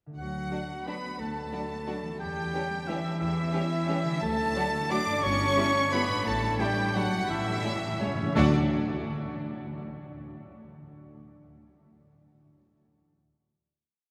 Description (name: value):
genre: classical, orchestral ballroom waltz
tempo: 163-194 BPM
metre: 3/4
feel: rubato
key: D major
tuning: A4 = 445 Hz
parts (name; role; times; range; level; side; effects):
- concert harp; arpeggios; 0.1-8.5 s; G2 to F#5; -38 LUFS; equal; none
- clear studio violin section; melody; 0.2-8.5 s; C#5 to D6; -37 LUFS; equal; none
- clear clarinet; second line; 0.2-8.5 s; C#4 to D5; -38 LUFS; equal; none
- clear oboe; second line; 0.2-8.5 s; A4 to D6; -36 LUFS; equal; none
- rich studio double bass section; bass; 0.2-8.5 s; G1 to E2; -39 LUFS; equal; none
- warm studio cello section; bass; 0.2-8.5 s; C#3 to D4; -37 LUFS; equal; none
- rich studio violin section; second line; 0.5-8.5 s; C#4 to G4; -41 LUFS; equal; none
- rich studio viola section; accompaniment; 0.5-8.5 s; E3 to B3; -38 LUFS; equal; none
- mellow French horn section; sustained chords; 0.5-8.5 s; F#3 to E4; -43 LUFS; equal; none
- timpani; percussion; 4.2-4.7, 7.3-8.5 s; A2 to D3; -40 LUFS; equal; none
room: wet cathedral reverb, RT60 5.1 s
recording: none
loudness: -29 LUFS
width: mono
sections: 0.2-8.4 A section; 8.4-9.4 final chord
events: timpani fill 7.3-8.4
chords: 0.2 D; 2.2 C#dim/E; 4.2 D; 5.2 Em/G; 6.3 A7sus4; 7.3 A7; 8.4 D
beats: | 0.18 0.52 0.88 | 1.21 1.53 1.88 | 2.21 2.54 2.88 | 3.21 3.53 3.88 | 4.22 4.56 4.91 | 5.24 5.57 5.93 | 6.26 6.60 6.96 | 7.29 7.63 8.00 | 8.35